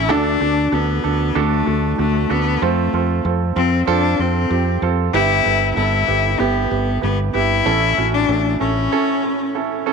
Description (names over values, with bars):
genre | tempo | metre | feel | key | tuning
piano-driven pop | 95 BPM | 4/4 | straight | unclear | A4 = 440 Hz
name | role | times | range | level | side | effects
clear cello | melody | 0.0-9.8 s | A3 to E4 | -19 LUFS | left 12 dB | none
warm baby grand piano | accompaniment | 0.0-9.9 s | G2 to B4 | -20 LUFS | right 13 dB | none
fingered electric bass | bass | 0.0-8.9 s | G1 to F2 | -21 LUFS | equal | none
room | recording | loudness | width
light reverb, small room ambience | 1960s-style stereo with parts hard left and right | -15 LUFS | side -5 dB against mid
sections
0.0-9.9 A section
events
break 8.9-9.9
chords
0.1 D; 2.6 F; 5.1 Em/G; 7.7 A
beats
| 0.10 0.73 1.36 1.99 | 2.62 3.25 3.88 4.51 | 5.14 5.77 6.40 7.03 | 7.66 8.29 8.92 9.55